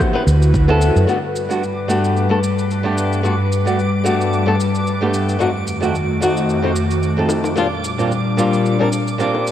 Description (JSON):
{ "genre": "sunset chillout", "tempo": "111 BPM", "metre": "4/4", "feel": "swing 55% on 16ths", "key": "G major", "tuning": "A4 = 440 Hz", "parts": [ { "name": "flamenco guitar", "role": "accompaniment", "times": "0.0-9.5 s", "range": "F2 to C5", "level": "-19 LUFS", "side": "left 1 dB", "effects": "auto-pan, vintage 12-bit sampler grit, digital delay" }, { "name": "airy breathy pad", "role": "sustained chords", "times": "0.0-9.5 s", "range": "F2 to B4", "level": "-19 LUFS", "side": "equal", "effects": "chorus, vintage 12-bit sampler grit" }, { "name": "electronic kick drum", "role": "drums", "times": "0.0-0.7 s", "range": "none", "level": "-20 LUFS", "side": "equal", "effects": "overdrive, studio reverb" }, { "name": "electronic rim click and cabasa", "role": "drums", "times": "0.0-9.5 s", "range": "none", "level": "-28 LUFS", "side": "right 1 dB", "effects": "studio reverb" }, { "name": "woody fretless electric bass", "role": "bass", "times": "0.3-1.0 s", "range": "D2 to F#2", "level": "-13 LUFS", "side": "equal", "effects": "none" }, { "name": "bongos", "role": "percussion", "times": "0.7-0.8, 7.3-9.4 s", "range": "none", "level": "-27 LUFS", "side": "left 3 dB", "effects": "none" }, { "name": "twinkling granular texture", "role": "texture", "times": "1.6-9.5 s", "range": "D6", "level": "-28 LUFS", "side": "right 3 dB", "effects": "built-in reverb" } ], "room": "moderate lush hall reverb, RT60 2.2 s", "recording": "worn, warbling old tape, cassette tape, warbly pitch drift", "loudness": "-15 LUFS", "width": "side -11 dB against mid", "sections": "0.0-1.1 A section; 1.1-9.5 B section", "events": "none", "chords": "0.0 D13; 1.1 Gmaj7; 5.4 F7b9; 7.6 Bb6", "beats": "0.00 0.54 | 1.08 1.62 2.16 2.70 | 3.24 3.78 4.32 4.86 | 5.40 5.94 6.49 7.03 | 7.57 8.11 8.65 9.19" }